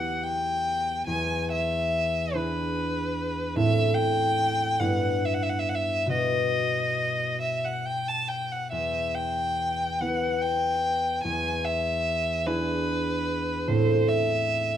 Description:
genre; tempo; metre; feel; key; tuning
classical, romantic duo for violin and harp; 46-50 BPM (dotted quarters); 6/8; rubato; E minor; A4 = 440 Hz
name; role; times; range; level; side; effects
warm violin; melody; 0.0-14.8 s; B4 to A5; -26 LUFS; left 1 dB; none
concert harp; accompaniment; 0.0-14.8 s; E2 to B4; -27 LUFS; right 1 dB; none
room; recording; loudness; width
moderate large studio reverb, RT60 1.3 s; minimal, uncompressed stereo recording; -24 LUFS; side -10 dB against mid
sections
0.0-14.8 A section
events
none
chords
0.0 Em; 1.1 E7; 3.6 Am; 4.8 Em/G; 6.1 B; 8.7 Em; 11.2 E7; 13.7 Am

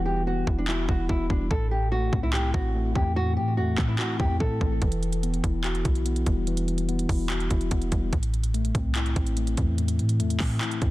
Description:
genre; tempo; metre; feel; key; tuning
hip hop, trap; 145 BPM; 4/4; half-time; unclear; A4 = 441 Hz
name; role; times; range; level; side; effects
mellow tine electric piano; accompaniment; 0.0-10.9 s; A2 to F#4; -29 LUFS; left 2 dB; slow stereo tremolo, low-pass filter
clean 808-style bass; bass; 0.0-10.9 s; E1 to A2; -27 LUFS; equal; none
nylon-string guitar; melody; 0.1-4.8 s; D4 to A4; -31 LUFS; equal; low-pass filter, ping-pong delay
trap drum kit; drums; 0.5-10.9 s; handclaps, hi-hat, kick drum; -28 LUFS; equal; none
room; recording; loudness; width
digital ambience; dense, heavily limited modern master; -23 LUFS; side -17 dB against mid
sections
0.0-10.9 A section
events
break 0.0-4.8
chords
0.0 Emadd9; 1.5 Am; 4.8 Emadd9; 8.1 Am

